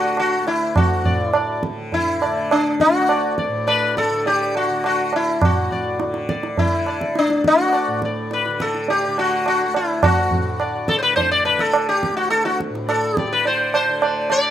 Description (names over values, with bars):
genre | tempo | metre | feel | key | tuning
indian classical, Hindustani | 104 BPM | 4/4 | straight | D raga khamaj | A4 = 440 Hz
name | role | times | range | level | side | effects
sitar | melody | 0.0-14.5 s | D4 to D5 | -18 LUFS | left 2 dB | slapback echo
tanpura | drone | 0.0-14.5 s | D2 to D3 | -29 LUFS | equal | stereo widening
tabla | percussion | 0.2-14.5 s | none | -22 LUFS | right 3 dB | slapback echo
room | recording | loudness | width
little or no reverb | recorded outdoors, with no room sound | -17 LUFS | side -11 dB against mid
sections
0.0-5.4 A section; 5.4-14.5 B section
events
speeding up 0.0-14.5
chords
none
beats
0.17 | 0.76 1.34 1.93 2.51 | 3.10 3.68 4.26 4.84 | 5.42 6.00 6.58 7.16 | 7.73 8.31 8.88 9.46 | 10.03 10.60 11.18 11.74 | 12.31 12.88 13.45 14.02